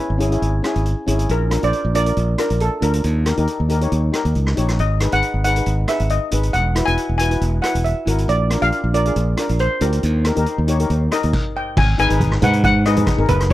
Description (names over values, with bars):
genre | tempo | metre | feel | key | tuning
calypso | 137 BPM | 4/4 | straight | G# minor | A4 = 438 Hz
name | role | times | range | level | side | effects
steel pan | melody | 0.0-13.5 s | A4 to G#5 | -22 LUFS | equal | tape echo
steel pan | accompaniment | 0.0-13.5 s | C#4 to C#5 | -23 LUFS | left 2 dB | none
modern bright fingered electric bass | bass | 0.1-13.5 s | E1 to G#2 | -18 LUFS | equal | none
street-band drum kit | drums | 0.2-13.5 s | crash cymbal, hi-hat, kick drum, rim click | -25 LUFS | equal | none
congas | percussion | 12.4-13.4 s | none | -22 LUFS | right 2 dB | none
room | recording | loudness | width
light reverb | dry, close 1970s-style studio recording | -16 LUFS | side -15 dB against mid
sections
0.0-11.8 A section; 11.8-13.5 B section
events
stop 11.3-11.8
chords
0.0 C#m/G#; 1.3 A#; 3.0 D#; 4.8 G#m7; 6.5 Esus2; 8.3 A#; 10.0 D#; 11.8 G#m7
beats
0.42 0.86 | 1.29 1.73 2.17 2.61 | 3.04 3.48 3.92 4.35 | 4.79 5.23 5.66 6.10 | 6.54 6.97 7.41 7.85 | 8.28 8.72 9.16 9.59 | 10.03 10.46 10.90 11.34 | 11.77 12.20 12.64 13.07 | 13.51